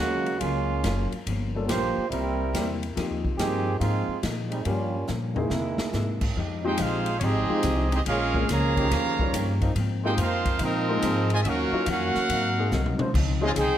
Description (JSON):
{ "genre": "jazz, big band swing", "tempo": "142 BPM", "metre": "4/4", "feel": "swing 66% on 8ths", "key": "F minor", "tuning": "A4 = 440 Hz", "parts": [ { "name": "clear trombone section", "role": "second line", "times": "0.0-13.8 s", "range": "C3 to C5", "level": "-29 LUFS", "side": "right 3 dB", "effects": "none" }, { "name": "vintage hollow-body jazz guitar", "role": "accompaniment", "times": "0.0-13.8 s", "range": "G2 to Ab4", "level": "-33 LUFS", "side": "left 5 dB", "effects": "none" }, { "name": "upright bass", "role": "bass", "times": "0.0-13.8 s", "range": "Gb1 to C3", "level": "-28 LUFS", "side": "equal", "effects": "none" }, { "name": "swinging big-band drum kit", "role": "drums", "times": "0.3-13.7 s", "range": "crash cymbal, hi-hat, kick drum, ride cymbal, snare drum, toms", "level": "-32 LUFS", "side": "equal", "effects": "none" }, { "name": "warm baby grand piano", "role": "accompaniment", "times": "1.6-13.6 s", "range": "E3 to A4", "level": "-32 LUFS", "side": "left 4 dB", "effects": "none" }, { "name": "bright trumpet section", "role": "melody", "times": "6.7-13.8 s", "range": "C4 to Bb5", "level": "-28 LUFS", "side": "right 2 dB", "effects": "none" }, { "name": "mellow trombone section", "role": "sustained chords", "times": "7.5-13.1 s", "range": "Eb3 to C5", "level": "-35 LUFS", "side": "equal", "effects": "none" } ], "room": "moderate recital hall reverb, RT60 1.5 s", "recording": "none", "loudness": "-23 LUFS", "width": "side -11 dB against mid", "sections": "0.0-6.4 A section; 6.4-13.8 B section", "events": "trombone section solo 0.0-6.4; drum fill 5.1-5.9, 12.7-13.1", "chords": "0.0 Gbmaj9; 1.3 Gm7b5; 2.1 C7; 3.0 Fm11; 4.7 Gm7b5; 5.5 C7alt; 6.4 Fm9; 8.1 Bbm7; 8.9 Eb7; 9.8 Ab69; 11.5 Ebm9; 12.3 Ab7; 13.1 Dbmaj9", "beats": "0.41 0.84 | 1.27 1.69 2.12 2.54 | 2.97 3.40 3.82 4.25 | 4.67 5.10 5.52 5.95 | 6.37 6.79 7.22 7.64 | 8.06 8.49 8.91 9.34 | 9.76 10.18 10.61 11.03 | 11.45 11.88 12.30 12.72 | 13.15 13.57" }